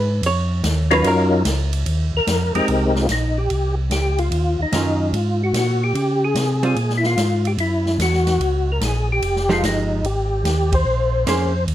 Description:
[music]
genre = soul jazz organ trio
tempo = 147 BPM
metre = 4/4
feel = swing 67% on 8ths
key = Ab major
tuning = A4 = 441 Hz
[part]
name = archtop guitar, miked and amplified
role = accompaniment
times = 0.0-1.7, 4.7-6.8, 9.5-11.5 s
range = Eb3 to Db5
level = -22 LUFS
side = right 3 dB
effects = none
[part]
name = mellow tonewheel organ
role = bass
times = 0.0-11.7 s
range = F1 to Db3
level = -20 LUFS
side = equal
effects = chorus vibrato, slow rotary speaker
[part]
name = swinging big-band drum kit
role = drums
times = 0.2-11.7 s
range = hi-hat, kick drum, ride cymbal, snare drum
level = -27 LUFS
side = equal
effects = none
[part]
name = percussive tonewheel organ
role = melody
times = 0.9-11.6 s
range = Gb3 to C5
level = -20 LUFS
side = left 1 dB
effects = slow rotary speaker, chorus vibrato, plate reverb
[sound]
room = light reverb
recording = none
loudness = -17 LUFS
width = side -12 dB against mid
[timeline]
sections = 0.0-2.7 A section; 2.7-11.7 B section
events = hollow-body jazz guitar solo 0.0-2.7; band accent 10.7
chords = 0.0 Fm7; 1.0 Ebm7; 1.9 Ebadd9; 2.7 Abmaj9; 4.3 Ebm9; 5.1 Absus2; 6.0 Dbmaj7#11; 7.6 Gb7; 9.2 Fm9; 10.9 Bbm9

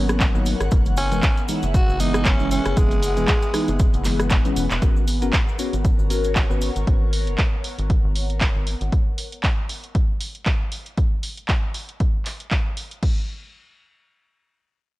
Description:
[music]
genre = deep house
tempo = 117 BPM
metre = 4/4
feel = swing 56% on 16ths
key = G# minor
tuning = A4 = 439 Hz
[part]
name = bell-like tine electric piano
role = stabs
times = 0.0-6.7 s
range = E3 to C#5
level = -26 LUFS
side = left 1 dB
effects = phaser, sidechain pumping, analog delay
[part]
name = rubbery square bass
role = bass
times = 0.0-8.9 s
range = E1 to G#1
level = -24 LUFS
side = equal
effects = sidechain pumping
[part]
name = airy breathy pad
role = texture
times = 0.0-8.9 s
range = B3 to F#5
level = -31 LUFS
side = left 1 dB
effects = chorus, phaser, sidechain pumping
[part]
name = punchy analog drum machine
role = drums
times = 0.1-13.1 s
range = crash cymbal, handclaps, hi-hat, rim click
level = -27 LUFS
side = right 1 dB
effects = none
[part]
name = cabasa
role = percussion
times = 0.1-6.9 s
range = none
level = -41 LUFS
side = left 1 dB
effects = none
[part]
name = electronic kick drum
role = drums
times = 0.2-13.1 s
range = none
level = -20 LUFS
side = equal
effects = none
[part]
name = growling tenor saxophone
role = melody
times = 1.0-4.3 s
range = G#3 to F#4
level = -27 LUFS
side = left 1 dB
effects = analog delay
[sound]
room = digital ambience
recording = dry, gritty hardware recording, cassette tape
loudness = -19 LUFS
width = side -18 dB against mid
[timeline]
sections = 0.0-4.8 A section; 4.8-13.0 B section; 13.0-15.0 C section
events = drop 0.0-4.8; drum fill 4.3-4.8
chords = 0.0 G#m11; 0.7 F#9sus4; 4.8 G#m11; 8.9 N.C.

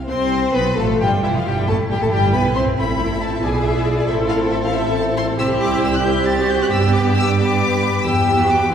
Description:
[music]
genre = quick classical-period movement for string orchestra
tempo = 90 BPM (dotted quarters)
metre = 6/8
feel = rubato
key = G major from 5.4 s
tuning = A4 = 443 Hz
[part]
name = rich chamber violin section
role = second line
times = 0.0-8.7 s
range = E4 to G5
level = -22 LUFS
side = left 2 dB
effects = none
[part]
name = dark chamber violin section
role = melody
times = 0.1-8.7 s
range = D5 to A6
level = -24 LUFS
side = left 3 dB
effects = none
[part]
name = rich chamber viola section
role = accompaniment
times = 0.1-8.7 s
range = E3 to G4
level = -21 LUFS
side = equal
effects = none
[part]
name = rich studio double bass section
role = bass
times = 0.1-8.7 s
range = E1 to G2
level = -21 LUFS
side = right 2 dB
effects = none
[part]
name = rich chamber cello section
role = bass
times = 0.8-8.7 s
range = E4 to B4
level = -24 LUFS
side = right 3 dB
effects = none
[sound]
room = wet concert hall reverb, RT60 2.3 s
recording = heard from further back in the room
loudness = -15 LUFS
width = side -8 dB against mid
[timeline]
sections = 0.1-8.7 A section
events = none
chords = 0.1 N.C.; 0.8 Fmaj9; 1.5 C/G; 2.8 Am; 3.4 E7/B; 4.1 Am; 5.4 C; 6.7 G; 8.0 Em

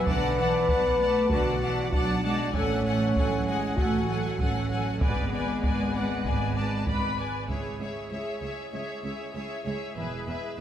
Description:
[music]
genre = cinematic, epic orchestral film score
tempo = 97 BPM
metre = 4/4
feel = straight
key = C# minor from 7.5 s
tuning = A4 = 440 Hz
[part]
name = warm symphonic violin section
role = melody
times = 0.0-10.6 s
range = E5 to B5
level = -36 LUFS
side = left 5 dB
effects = none
[part]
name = bright symphonic violin section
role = second line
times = 0.0-10.6 s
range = B4 to F#5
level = -36 LUFS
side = left 2 dB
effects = none
[part]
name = clear symphonic viola section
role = accompaniment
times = 0.0-10.6 s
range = G#4 to D5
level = -35 LUFS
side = right 2 dB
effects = none
[part]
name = warm French horn section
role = sustained chords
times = 0.0-10.6 s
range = G#3 to B4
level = -30 LUFS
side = left 2 dB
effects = none
[part]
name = rich symphonic cello section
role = bass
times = 0.0-10.6 s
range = C#2 to A3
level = -32 LUFS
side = right 2 dB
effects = none
[part]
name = rich symphonic double bass section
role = bass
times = 0.1-10.3 s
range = E1 to C#2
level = -32 LUFS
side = right 4 dB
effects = none
[part]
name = taiko ensemble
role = drums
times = 0.1-8.7 s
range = none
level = -31 LUFS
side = equal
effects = none
[sound]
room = wet concert hall reverb, RT60 2.4 s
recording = none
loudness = -25 LUFS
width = side -10 dB against mid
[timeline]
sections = 0.0-7.5 A section; 7.5-10.6 B section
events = none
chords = 0.1 Bm7; 2.5 F#madd9/A; 5.0 G#dim; 7.5 C#m; 10.0 E

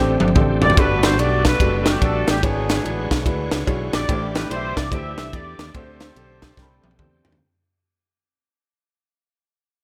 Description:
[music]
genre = uptempo gospel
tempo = 145 BPM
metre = 4/4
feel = swing 63% on 8ths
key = G major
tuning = A4 = 439 Hz
[part]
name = mellow horn section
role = melody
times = 0.0-7.0 s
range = B3 to E5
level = -27 LUFS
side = equal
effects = none
[part]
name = dark upright piano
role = accompaniment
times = 0.0-7.3 s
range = G2 to B5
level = -27 LUFS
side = equal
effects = none
[part]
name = bright tonewheel organ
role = sustained chords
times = 0.0-7.4 s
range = D3 to C#5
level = -34 LUFS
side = equal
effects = none
[part]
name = fingered electric bass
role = bass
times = 0.0-7.4 s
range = F#1 to E2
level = -27 LUFS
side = equal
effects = none
[part]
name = crisp fusion drum kit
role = drums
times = 0.2-7.4 s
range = kick drum, ride cymbal, snare drum, toms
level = -23 LUFS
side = equal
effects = none
[sound]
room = light reverb, small room ambience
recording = none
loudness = -19 LUFS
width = mono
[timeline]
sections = 0.8-7.4 A section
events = drum fill 0.0-0.8, 6.6-7.4; fade-out 0.8-7.4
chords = 0.0 D7sus4; 0.8 Gmaj9; 2.4 E13/G#; 4.1 A7sus4; 5.7 D7sus4

